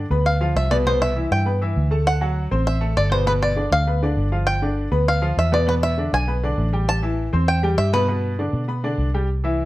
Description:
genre	latin, salsa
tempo	199 BPM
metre	4/4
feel	straight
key	unclear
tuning	A4 = 440 Hz
part	bluegrass banjo	melody	0.0-8.9 s	B4 to A5	-22 LUFS	equal	plate reverb
part	bright baby grand piano	accompaniment	0.0-9.7 s	B2 to C6	-24 LUFS	left 1 dB	none
part	vintage muted fingered electric bass	bass	0.0-9.7 s	G1 to B2	-21 LUFS	equal	none
room	light reverb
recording	dark, warm production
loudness	-18 LUFS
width	side -17 dB against mid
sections	0.0-9.3 A section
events	none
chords	0.0 G7; 0.9 Cmaj7; 2.1 D7; 3.3 G7; 5.7 E7; 6.9 Am7; 8.1 G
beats	0.26 0.56 | 0.86 1.16 1.46 1.76 | 2.06 2.37 2.67 2.97 | 3.27 3.57 3.87 4.17 | 4.47 4.78 5.08 5.38 | 5.68 5.98 6.28 6.58 | 6.88 7.18 7.48 7.78 | 8.09 8.38 8.69 8.99 | 9.29 9.59

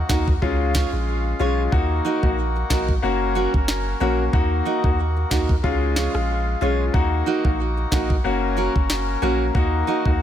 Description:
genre	dancehall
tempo	92 BPM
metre	4/4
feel	swing 56% on 16ths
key	Eb minor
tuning	A4 = 440 Hz
part	accordion	sustained chords	0.0-10.2 s	Db3 to Bb4	-30 LUFS	left 3 dB	stereo widening, sidechain pumping
part	punchy sub bass	bass	0.0-10.2 s	Gb1 to Eb2	-24 LUFS	equal	none
part	downlifter	sound effects	0.0-1.7 s	none	barely audible	none	none
part	clear baby grand piano	accompaniment	0.1-10.2 s	Ab3 to Gb4	-24 LUFS	left 5 dB	sidechain pumping
part	fingerpicked steel-string acoustic guitar	arpeggios	0.1-10.1 s	Db4 to Db5	-27 LUFS	right 7 dB	digital delay
part	afro-pop drum kit	drums	0.1-10.2 s	kick drum, rim click, snare drum	-22 LUFS	equal	none
room	small room ambience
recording	none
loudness	-18 LUFS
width	side -10 dB against mid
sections	0.0-10.2 A section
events	none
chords	0.4 Db; 1.7 Ebm; 3.0 Gb; 4.3 Ebm; 5.6 Db; 6.9 Ebm; 8.2 Gb; 9.6 Ebm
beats	0.42 1.07 | 1.73 2.38 3.03 3.68 | 4.33 4.99 5.64 6.29 | 6.94 7.59 8.25 8.90 | 9.55 10.20

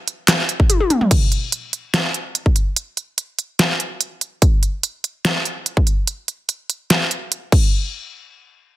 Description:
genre	dubstep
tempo	145 BPM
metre	4/4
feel	half-time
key	none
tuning	none
part	dubstep drum kit	drums	0.1-7.6 s	crash cymbal, handclaps, hi-hat, snare drum, toms	-17 LUFS	equal	none
part	electronic kick drum	drums	0.6-7.6 s	none	-15 LUFS	equal	none
room	little or no reverb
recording	dense, heavily limited modern master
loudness	-17 LUFS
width	side -15 dB against mid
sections	0.0-1.1 A section; 1.1-7.7 B section; 7.7-8.8 C section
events	drop 0.0-1.1; drum fill 0.7-1.1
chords	none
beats	0.28 0.70 | 1.11 1.52 1.94 2.35 | 2.77 3.18 3.59 4.01 | 4.42 4.83 5.25 5.66 | 6.08 6.49 6.90 7.32

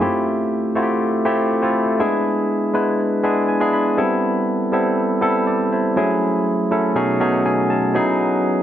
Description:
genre	pop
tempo	121 BPM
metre	4/4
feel	straight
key	unclear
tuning	A4 = 442 Hz
part	barky tine electric piano	solo	0.0-8.6 s	B2 to B5	-16 LUFS	equal	overdrive, lush chorus, digital delay
room	light reverb, digital ambience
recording	none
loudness	-16 LUFS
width	side -11 dB against mid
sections	0.0-8.6 A section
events	tine electric piano fill 3.0-4.0, 7.0-7.9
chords	0.0 Fmaj9; 2.0 E7; 4.0 Am9; 6.0 F#m7; 7.0 B13; 7.9 Emaj9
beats	| 0.01 0.51 1.01 1.50 | 2.00 2.50 2.99 3.49 | 3.98 4.48 4.97 5.47 | 5.97 6.46 6.96 7.45 | 7.95 8.44

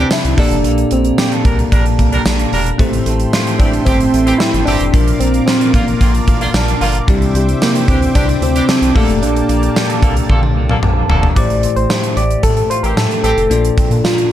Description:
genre	1980s-style pop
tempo	112 BPM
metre	4/4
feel	straight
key	unclear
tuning	A4 = 440 Hz
part	soft struck synth lead	melody	0.0-14.3 s	G3 to D5	-17 LUFS	equal	chorus
part	bell-like tine electric piano	accompaniment	0.0-14.3 s	A2 to D5	-19 LUFS	left 4 dB	none
part	clean electric guitar	riff	0.0-14.3 s	E3 to A4	-25 LUFS	right 5 dB	wide subtle chorus, tape echo
part	clear horn section	stabs	0.0-13.4 s	D3 to Bb4	-23 LUFS	right 1 dB	tape echo
part	round analog bass	bass	0.0-14.0 s	E1 to Bb2	-18 LUFS	equal	none
part	gated 80s drum kit	drums	0.1-14.3 s	hi-hat, kick drum, snare drum, tambourine, toms	-15 LUFS	equal	none
part	brassy analog pad	sustained chords	2.8-11.3 s	Bb3 to D6	-26 LUFS	right 1 dB	chorus
room	light reverb, studio reverb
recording	dark, warm production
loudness	-11 LUFS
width	side -12 dB against mid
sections	0.0-11.4 A section; 11.4-14.3 B section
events	drum fill 10.3-11.4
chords	0.4 Gmadd9; 2.8 Am7; 4.9 Bb; 7.1 Cadd9; 9.0 Gmadd9; 11.4 Am7; 13.5 Bb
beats	0.12 | 0.65 1.19 1.72 2.26 | 2.79 3.33 3.87 4.40 | 4.94 5.47 6.01 6.54 | 7.08 7.62 8.15 8.69 | 9.22 9.76 10.29 10.83 | 11.37 11.90 12.44 12.97 | 13.51 14.04

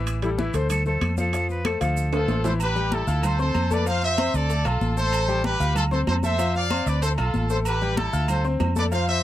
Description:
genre	latin, salsa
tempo	190 BPM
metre	4/4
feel	straight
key	unclear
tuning	A4 = 441 Hz
part	bright grand piano	accompaniment	0.0-9.2 s	E3 to F6	-28 LUFS	left 5 dB	none
part	vintage muted fingered electric bass	bass	0.0-9.2 s	A1 to F2	-24 LUFS	right 1 dB	none
part	claves	percussion	0.1-8.8 s	none	-41 LUFS	left 10 dB	none
part	congas	percussion	0.1-9.2 s	none	-30 LUFS	left 2 dB	none
part	maracas	percussion	0.1-9.2 s	none	-42 LUFS	right 19 dB	none
part	timbales and agogo bells	percussion	0.1-9.1 s	none	-33 LUFS	right 8 dB	none
part	bright reedy silver concert flute	melody	0.2-2.4 s	E4 to C5	-29 LUFS	right 1 dB	none
part	brilliant trumpet section	melody	2.1-9.2 s	E4 to F5	-26 LUFS	equal	none
room	little or no reverb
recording	dry, close 1970s-style studio recording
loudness	-21 LUFS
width	side -13 dB against mid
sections	0.0-2.6 A section; 2.6-9.2 B section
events	drum fill 2.1-2.6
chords	0.1 Am7; 0.7 Dm7; 2.6 A5; 3.2 Dm7; 3.9 Fmaj7; 4.5 Dm; 5.1 Am7; 5.8 Dm7; 6.4 F5; 7.0 Dm; 7.7 A5; 8.3 Dm7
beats	| 0.07 0.39 0.70 1.02 | 1.33 1.65 1.97 2.28 | 2.60 2.92 3.23 3.55 | 3.86 4.18 4.50 4.81 | 5.13 5.44 5.76 6.08 | 6.39 6.71 7.02 7.34 | 7.66 7.97 8.29 8.60 | 8.92

